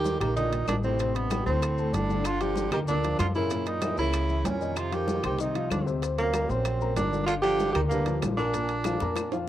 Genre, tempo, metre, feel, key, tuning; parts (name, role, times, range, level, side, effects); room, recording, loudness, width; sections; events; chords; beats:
Afro-Cuban jazz; 191 BPM; 4/4; straight; A4 = 440 Hz
warm tenor saxophone; melody; 0.0-9.5 s; A#3 to G4; -29 LUFS; right 2 dB; cassette tape
breathy baritone saxophone; second line; 0.0-9.5 s; F#2 to Eb3; -34 LUFS; right 6 dB; cassette tape
dark upright piano; accompaniment; 0.0-9.5 s; Bb2 to C6; -33 LUFS; left 6 dB; cassette tape
upright bass; bass; 0.0-9.4 s; G1 to Gb2; -30 LUFS; equal
bongos; percussion; 0.0-9.2 s; -42 LUFS; left 9 dB
congas; percussion; 0.1-9.5 s; -35 LUFS; left 1 dB
maracas; percussion; 0.1-9.5 s; -46 LUFS; left 8 dB
claves; percussion; 0.2-9.3 s; -43 LUFS; left 10 dB
timbales; percussion; 0.2-9.4 s; -38 LUFS; right 9 dB
moderate spring reverb, RT60 2.5 s; home recording on cassette; -24 LUFS; side -12 dB against mid
0.0-9.5 A section
drum fill 8.8-9.5
0.0 Ebmaj7; 1.0 Am11; 1.6 D5; 2.2 Gm7; 3.5 Gb7; 4.8 Fsus2; 6.0 Daug7; 7.3 Gm7; 8.5 Bb
0.05 0.36 0.68 | 0.99 1.31 1.62 1.94 | 2.25 2.56 2.88 3.19 | 3.51 3.82 4.14 4.45 | 4.77 5.08 5.39 5.71 | 6.02 6.34 6.65 6.97 | 7.28 7.59 7.91 8.22 | 8.54 8.85 9.16 9.48